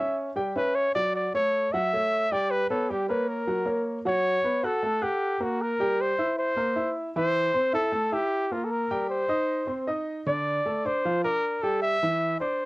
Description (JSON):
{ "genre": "jazz", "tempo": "154 BPM", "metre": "4/4", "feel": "straight", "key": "unclear", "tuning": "A4 = 440 Hz", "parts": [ { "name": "breathy trumpet", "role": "melody", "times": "0.0-12.7 s", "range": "F4 to E5", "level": "-25 LUFS", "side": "equal", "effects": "none" }, { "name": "warm grand piano", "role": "accompaniment", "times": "0.0-12.7 s", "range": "D3 to F#6", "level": "-29 LUFS", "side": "right 1 dB", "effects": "cassette tape" } ], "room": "light reverb", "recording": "home recording on cassette", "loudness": "-24 LUFS", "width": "side -21 dB against mid", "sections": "0.0-4.1 A section; 4.1-12.7 B section", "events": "none", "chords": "0.2 Em6/G; 0.9 F#m7; 2.5 Gadd9; 3.3 F#; 4.1 Bsus2; 5.6 C7; 7.2 Fmaj9/E (rootless); 8.7 Cm7; 9.5 Cm; 10.3 Bbmaj7; 11.8 Em7" }